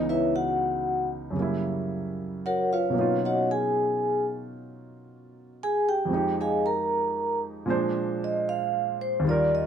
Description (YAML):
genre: jazz ballad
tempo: 76 BPM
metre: 4/4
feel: swing 68% on 8ths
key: unclear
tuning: A4 = 440 Hz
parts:
  - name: vibraphone with medium mallets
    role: melody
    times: 0.0-9.7 s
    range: Fb4 to Bb5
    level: -25 LUFS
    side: equal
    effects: none
  - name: warm baby grand piano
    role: accompaniment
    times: 0.0-9.7 s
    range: Db2 to C5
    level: -29 LUFS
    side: right 1 dB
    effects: none
room: light reverb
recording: close, detailed microphones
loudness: -24 LUFS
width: side -8 dB against mid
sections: 0.0-9.7 A section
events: vibraphone solo 0.0-9.7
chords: 0.0 Dbm7; 1.3 Gb7b9; 2.9 Bmaj9#11; 6.1 Fm7; 7.7 Bb7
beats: 0.55 1.34 2.14 | 2.93 3.73 4.52 5.31 | 6.09 6.87 7.66 8.44 | 9.22